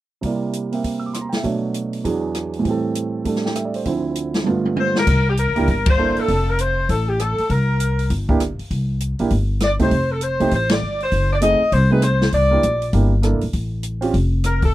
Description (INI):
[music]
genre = jazz, big band swing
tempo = 198 BPM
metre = 4/4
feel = swing 62% on 8ths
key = C mixolydian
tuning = A4 = 445 Hz
[part]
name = warm grand piano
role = accompaniment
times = 0.2-14.1 s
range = D2 to E6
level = -21 LUFS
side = right 4 dB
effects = none
[part]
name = open jazz drum kit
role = drums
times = 0.2-14.7 s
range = crash cymbal, hi-hat, kick drum, ride cymbal, rim click, snare drum, toms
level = -23 LUFS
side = equal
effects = none
[part]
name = warm saxophone section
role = melody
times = 4.8-14.7 s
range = G4 to D#5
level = -20 LUFS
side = left 1 dB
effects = none
[part]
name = upright bass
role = bass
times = 5.1-14.7 s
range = F1 to D2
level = -19 LUFS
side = left 1 dB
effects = none
[sound]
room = little or no reverb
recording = dry, close 1970s-style studio recording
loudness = -17 LUFS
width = side -15 dB against mid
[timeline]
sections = 0.2-5.1 A section; 5.1-14.7 B section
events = drum fill 4.5-5.1; band accent 5.8, 10.7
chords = 0.2 C7; 1.4 Bm7; 2.0 E7; 2.7 Am7; 3.9 Dm7; 4.5 G7; 5.1 C9; 6.3 F; 7.5 C7(no3); 9.9 Fadd9; 11.1 F#dim7; 12.3 C9; 13.5 A(#5, no3)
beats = | 0.23 0.54 0.84 1.14 | 1.44 1.75 2.05 2.35 | 2.65 2.96 3.26 3.56 | 3.86 4.17 4.47 4.77 | 5.07 5.38 5.68 5.98 | 6.28 6.58 6.89 7.19 | 7.49 7.79 8.10 8.40 | 8.70 9.01 9.31 9.61 | 9.91 10.21 10.52 10.82 | 11.12 11.42 11.72 12.03 | 12.33 12.63 12.93 13.23 | 13.54 13.84 14.14 14.44 | 14.74